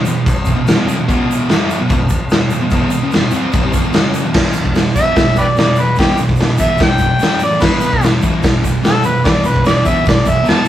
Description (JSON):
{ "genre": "garage rock duo or trio", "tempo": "147 BPM", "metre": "4/4", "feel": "straight", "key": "E minor", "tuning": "A4 = 437 Hz", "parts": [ { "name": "thick fuzz guitar", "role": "riff", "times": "0.0-10.7 s", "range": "E2 to C4", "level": "-17 LUFS", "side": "right 1 dB", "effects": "distortion" }, { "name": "egg shaker", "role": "percussion", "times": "0.1-10.7 s", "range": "none", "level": "-35 LUFS", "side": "right 5 dB", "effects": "none" }, { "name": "raw garage drum kit", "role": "drums", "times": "0.3-10.6 s", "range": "crash cymbal, hi-hat, kick drum, snare drum", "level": "-14 LUFS", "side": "equal", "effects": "none" }, { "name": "overdriven harmonica", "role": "melody", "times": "5.0-10.7 s", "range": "G4 to A5", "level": "-16 LUFS", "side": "equal", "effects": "none" } ], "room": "moderate studio reverb, RT60 0.6 s", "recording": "rough rehearsal-room recording", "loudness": "-11 LUFS", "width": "side -12 dB against mid", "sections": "0.0-4.3 A section; 4.3-10.7 B section", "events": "harmonica solo 4.3-10.7", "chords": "0.0 E5; 4.3 Em; 7.2 A5; 7.6 E5" }